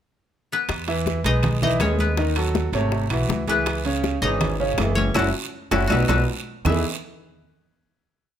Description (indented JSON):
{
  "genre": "latin, salsa",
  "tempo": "161 BPM",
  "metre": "4/4",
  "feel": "straight",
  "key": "E major",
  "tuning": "A4 = 440 Hz",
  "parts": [
    { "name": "koto", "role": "melody", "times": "0.5-7.5 s", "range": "B3 to E5", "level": "-26 LUFS", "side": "left 4 dB", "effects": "none" },
    { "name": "upright bass", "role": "bass", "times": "0.7-6.8 s", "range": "F#1 to E2", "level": "-24 LUFS", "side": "equal", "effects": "none" },
    { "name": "bongos", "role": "percussion", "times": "0.7-6.7 s", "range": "none", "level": "-31 LUFS", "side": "left 6 dB", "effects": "none" },
    { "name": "claves", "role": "percussion", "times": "0.7-6.7 s", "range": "none", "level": "-35 LUFS", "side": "left 4 dB", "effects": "none" },
    { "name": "congas", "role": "percussion", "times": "0.7-6.7 s", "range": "none", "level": "-28 LUFS", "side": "left 2 dB", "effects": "none" },
    { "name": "guiro", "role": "percussion", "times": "0.7-6.7 s", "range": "none", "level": "-36 LUFS", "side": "right 7 dB", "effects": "none" },
    { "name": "timbales", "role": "percussion", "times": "0.7-6.7 s", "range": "none", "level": "-31 LUFS", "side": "right 6 dB", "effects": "none" },
    { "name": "clear concert grand piano", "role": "accompaniment", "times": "0.9-6.8 s", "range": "C3 to E5", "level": "-25 LUFS", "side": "right 2 dB", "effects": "none" }
  ],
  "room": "light reverb",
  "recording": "close, detailed microphones",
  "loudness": "-20 LUFS",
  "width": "side -10 dB against mid",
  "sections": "0.0-0.7 pickup bar; 0.7-6.7 verse; 6.7-8.2 final chord",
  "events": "band accent 5.2-6.7; drum fill 5.5-6.7",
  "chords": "0.0 N.C.; 0.7 Emaj7; 2.2 D#m7b5; 2.9 G#7alt; 3.7 C#m7; 5.2 F#m7; 5.9 B7; 6.7 Emaj7",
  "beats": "0.32 | 0.69 1.06 1.43 1.80 | 2.17 2.55 2.92 3.29 | 3.66 4.04 4.41 4.78 | 5.16 5.53 5.91 6.28 | 6.65 7.03 7.40"
}